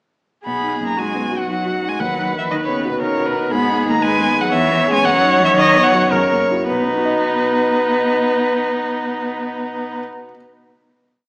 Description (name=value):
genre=quick classical-period movement for piano quartet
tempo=104-120 BPM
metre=3/4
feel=rubato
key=B major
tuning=A4 = 440 Hz
part: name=rich cello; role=second line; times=0.4-10.0 s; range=B2 to B3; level=-24 LUFS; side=equal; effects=none
part: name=rich violin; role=melody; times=0.5-10.0 s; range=B4 to B5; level=-19 LUFS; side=equal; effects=none
part: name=clear viola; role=accompaniment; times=0.5-10.0 s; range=D#4 to C#5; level=-20 LUFS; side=equal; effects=none
part: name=dark grand piano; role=accompaniment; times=0.5-10.4 s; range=B1 to D#5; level=-22 LUFS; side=equal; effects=none
room=wet recital hall reverb, RT60 1.5 s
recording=small speaker sound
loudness=-14 LUFS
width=side -31 dB against mid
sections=0.5-6.7 A section; 6.7-10.0 final chord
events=slowing down 2.8-6.7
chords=0.5 B; 2.0 B/D#; 3.5 G#m; 4.5 C#m7/E; 5.0 B/F#; 6.1 F#7; 6.7 B